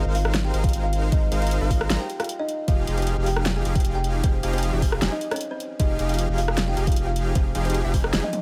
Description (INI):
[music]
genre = future bass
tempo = 154 BPM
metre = 4/4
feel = half-time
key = F minor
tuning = A4 = 435 Hz
[part]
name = kalimba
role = melody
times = 0.0-8.4 s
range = C4 to Ab5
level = -33 LUFS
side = equal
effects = sidechain pumping, dub echo
[part]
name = supersaw chords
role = riff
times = 0.0-8.2 s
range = F3 to Bb5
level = -32 LUFS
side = equal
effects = sidechain pumping
[part]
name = saturated sub bass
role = bass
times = 0.0-8.2 s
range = F1 to Ab1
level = -27 LUFS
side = equal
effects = sidechain pumping
[part]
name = pop drum kit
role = drums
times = 0.1-8.4 s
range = hi-hat, rim click, snare drum, toms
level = -30 LUFS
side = equal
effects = overdrive
[part]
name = electronic kick drum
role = drums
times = 0.6-8.0 s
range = none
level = -24 LUFS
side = equal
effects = overdrive
[sound]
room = little or no reverb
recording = none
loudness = -23 LUFS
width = mono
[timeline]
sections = 0.0-8.4 A section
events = drum fill 8.1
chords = 0.0 Ab69; 2.5 Fm7